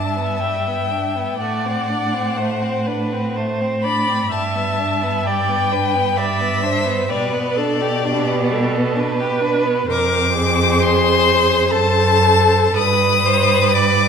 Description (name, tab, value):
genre	classical, slow romantic movement for string quartet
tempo	63 BPM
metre	3/4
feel	uneven beats, rubato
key	G major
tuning	A4 = 441 Hz
part	rich violin	melody	0.0-14.1 s	D5 to Eb6	-20 LUFS	left 7 dB	none
part	rich violin	second line	0.0-14.1 s	G3 to C5	-23 LUFS	left 1 dB	none
part	rich viola	accompaniment	0.0-14.1 s	G4 to E5	-21 LUFS	right 2 dB	none
part	rich cello	bass	0.0-14.1 s	F2 to B2	-21 LUFS	right 4 dB	none
room	wet recital hall reverb, RT60 1.5 s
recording	minimal, uncompressed stereo recording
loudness	-15 LUFS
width	side -6 dB against mid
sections	0.0-14.1 A section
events	none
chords	0.0 G; 1.4 D7/A; 4.3 G; 7.1 G/B; 9.9 Dm7b5/F; 11.7 F#dim; 12.8 G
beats	0.43 | 1.40 2.38 3.36 | 4.32 5.26 6.18 | 7.10 8.05 8.98 | 9.90 10.82 11.71 | 12.76 13.74